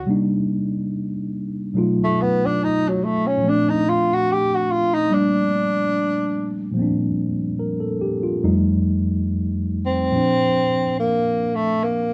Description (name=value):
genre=jazz ballad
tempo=72 BPM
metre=4/4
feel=swing 66% on 8ths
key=Bb major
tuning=A4 = 439 Hz
part: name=breathy tenor saxophone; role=melody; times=0.0-12.1 s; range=F#3 to G4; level=-22 LUFS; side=equal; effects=none
part: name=tine electric piano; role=accompaniment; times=0.0-12.1 s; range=F2 to Db5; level=-23 LUFS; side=equal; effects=none
room=light reverb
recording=dark, warm production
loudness=-21 LUFS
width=mono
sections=0.0-10.1 A section; 10.1-12.1 B section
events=tenor saxophone solo 0.0-10.1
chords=0.1 Cm9; 1.8 B7#11; 3.4 Bbmaj9; 8.4 F7; 10.1 Bbadd9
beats=| 0.09 0.93 1.76 2.60 | 3.43 4.26 5.10 5.93 | 6.76 7.60 8.45 9.29 | 10.14 10.98 11.82